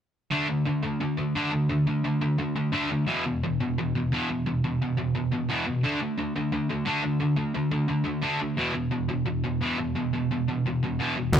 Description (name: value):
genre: punk rock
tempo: 174 BPM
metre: 4/4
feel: straight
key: unclear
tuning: A4 = 440 Hz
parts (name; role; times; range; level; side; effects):
- distorted electric guitar; riff; 0.3-11.4 s; E2 to D4; -27 LUFS; right 1 dB; distortion
- overdriven picked electric bass; bass; 11.3-11.4 s; D2; -19 LUFS; equal; none
- loose indie drum kit; drums; 11.3-11.4 s; hi-hat, kick drum; -21 LUFS; equal; none
room: little or no reverb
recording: rough rehearsal-room recording, tube saturation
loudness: -24 LUFS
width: side -9 dB against mid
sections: 0.3-11.4 A section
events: none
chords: 0.3 D5; 3.1 E5; 5.8 D5; 8.6 E5